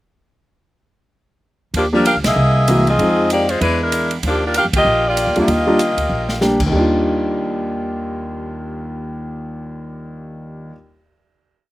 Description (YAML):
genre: jazz, big band swing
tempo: 193 BPM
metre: 4/4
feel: swing 61% on 8ths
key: Eb major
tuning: A4 = 440 Hz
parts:
  - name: upright bass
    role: bass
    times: 1.7-10.7 s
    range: Bb1 to F2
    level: -22 LUFS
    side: equal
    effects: none
  - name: swinging big-band drum kit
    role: drums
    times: 1.7-6.7 s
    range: crash cymbal, hi-hat, kick drum, ride cymbal, snare drum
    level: -25 LUFS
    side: right 1 dB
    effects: none
  - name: bright saxophone section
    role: melody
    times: 1.8-6.4 s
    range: F3 to F5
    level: -16 LUFS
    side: equal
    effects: none
  - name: warm concert grand piano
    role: accompaniment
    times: 1.9-10.7 s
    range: Eb2 to G4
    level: -19 LUFS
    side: equal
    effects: slapback echo
room: little or no reverb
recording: recorded outdoors, with no room sound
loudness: -14 LUFS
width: side -17 dB against mid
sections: 1.7-6.7 A section; 6.7-9.2 final chord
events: band accent 2.2, 4.7; drum fill 6.1-6.4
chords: 1.7 Ebmaj9; 2.4 C7alt; 3.0 Fm7; 3.6 E7#11; 4.2 Ebmaj9